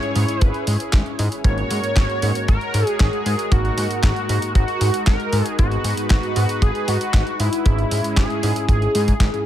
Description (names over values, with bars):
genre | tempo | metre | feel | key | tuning
italo disco | 116 BPM | 4/4 | straight | G# minor | A4 = 441 Hz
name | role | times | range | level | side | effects
wide unison lead | melody | 0.0-9.4 s | E4 to C#5 | -24 LUFS | equal | analog chorus, ping-pong delay
warm analog pad | sustained chords | 0.0-9.5 s | G#3 to C#5 | -28 LUFS | left 1 dB | chorus
bright tine electric piano | stabs | 0.0-9.5 s | G#2 to A#4 | -29 LUFS | right 3 dB | medium stereo tremolo
clean 12-bit digital drum machine | drums | 0.0-9.4 s | handclaps, hi-hat, snare drum | -27 LUFS | equal | overdrive
fat analog bass | bass | 0.2-9.3 s | G#1 to G#2 | -22 LUFS | equal | none
kick drum | drums | 0.4-9.3 s | none | -16 LUFS | equal | none
room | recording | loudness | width
little or no reverb | none | -17 LUFS | side -12 dB against mid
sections
0.0-9.5 A section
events
none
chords
0.0 C#m/G#; 1.4 F#/G#; 3.5 D#m/G#; 5.6 G#m7; 7.7 C#m/G#